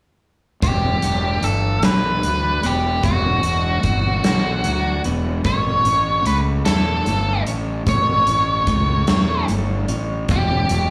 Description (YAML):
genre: quiet-loud alternative rock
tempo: 50 BPM (dotted quarters)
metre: 6/8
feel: straight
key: E dorian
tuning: A4 = 441 Hz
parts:
  - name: octave-fuzz lead guitar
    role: melody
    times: 0.6-10.9 s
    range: F#4 to C#5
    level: -23 LUFS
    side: equal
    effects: distortion, slapback echo
  - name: twelve-string electric guitar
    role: arpeggios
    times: 0.6-10.9 s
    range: E3 to E4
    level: -28 LUFS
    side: equal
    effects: slapback echo
  - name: fuzz fingered electric bass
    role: bass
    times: 0.6-10.9 s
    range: E1 to E2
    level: -24 LUFS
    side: equal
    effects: overdrive
  - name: huge arena drum kit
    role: drums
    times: 0.6-10.9 s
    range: hi-hat, kick drum, snare drum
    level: -26 LUFS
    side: equal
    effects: none
room: light reverb, studio reverb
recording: live gig heard through the venue's PA, club reverb, small room ambience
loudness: -19 LUFS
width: mono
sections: 0.6-10.9 A section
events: none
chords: 0.6 Emadd9; 5.5 A; 10.3 Emadd9